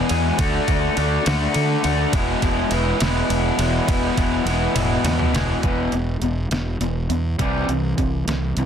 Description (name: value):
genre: indie rock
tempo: 68 BPM (dotted quarters)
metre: 6/8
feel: straight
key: E mixolydian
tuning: A4 = 440 Hz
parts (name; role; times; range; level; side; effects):
- raw garage guitar; riff; 0.0-8.7 s; E2 to G#4; -21 LUFS; left 1 dB; overdrive
- fuzz fingered electric bass; bass; 0.1-8.7 s; E1 to D3; -23 LUFS; equal; overdrive
- detuned 8-bit digital drum machine; drums; 0.1-8.7 s; hi-hat, kick drum, ride cymbal, snare drum, toms; -25 LUFS; right 1 dB; none
room: light reverb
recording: dense, heavily limited modern master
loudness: -18 LUFS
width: side -8 dB against mid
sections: 0.0-5.6 A section; 5.6-8.7 B section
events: drum fill 4.8-5.6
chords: 0.4 D; 2.1 E; 5.6 E5; 7.4 C